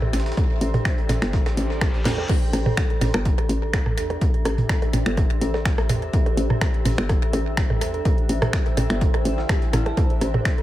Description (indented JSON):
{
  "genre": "minimal techno",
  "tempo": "125 BPM",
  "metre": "4/4",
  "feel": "swing 53% on 16ths",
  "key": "A minor",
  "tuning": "A4 = 440 Hz",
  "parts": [
    { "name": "dark detuned synth bell", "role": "riff", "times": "0.0-10.6 s", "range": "E4 to A5", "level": "-32 LUFS", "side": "equal", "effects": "chorus, phaser, sidechain pumping, tape echo" },
    { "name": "minimal click drum kit", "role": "percussion", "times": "0.0-10.4 s", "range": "percussion blips, rim click, toms", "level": "-26 LUFS", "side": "right 2 dB", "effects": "overdrive, studio reverb, tape echo" },
    { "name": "granular cloud pad", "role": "texture", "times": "0.0-10.6 s", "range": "D4 to G5", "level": "-31 LUFS", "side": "left 1 dB", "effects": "built-in reverb, sidechain pumping" },
    { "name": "hollow knocking FM bass", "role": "bass", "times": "0.1-10.4 s", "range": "G1 to E2", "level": "-25 LUFS", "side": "equal", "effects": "sidechain pumping" },
    { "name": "breakbeat sampler-style drum kit", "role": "drums", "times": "0.1-10.6 s", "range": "hi-hat, snare drum", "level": "-41 LUFS", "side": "right 1 dB", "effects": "none" },
    { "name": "garage drum kit", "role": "drums", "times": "0.1-10.6 s", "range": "crash cymbal, finger snaps, hi-hat, snare drum", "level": "-29 LUFS", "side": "equal", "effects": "studio reverb, tape echo" },
    { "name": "electronic kick drum", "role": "drums", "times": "0.4-10.6 s", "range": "none", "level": "-22 LUFS", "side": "equal", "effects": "studio reverb" },
    { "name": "reverse cymbal", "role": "sound effects", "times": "1.5-2.3 s", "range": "none", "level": "-36 LUFS", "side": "left 2 dB", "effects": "none" }
  ],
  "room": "little or no reverb",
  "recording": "echo-heavy mix, faint mains hum",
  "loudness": "-19 LUFS",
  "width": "side -14 dB against mid",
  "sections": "0.0-2.3 A section; 2.3-10.6 B section",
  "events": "reverse cymbal 1.5-2.3; drum fill 2.1; drop 2.3-10.6",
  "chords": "0.0 Am"
}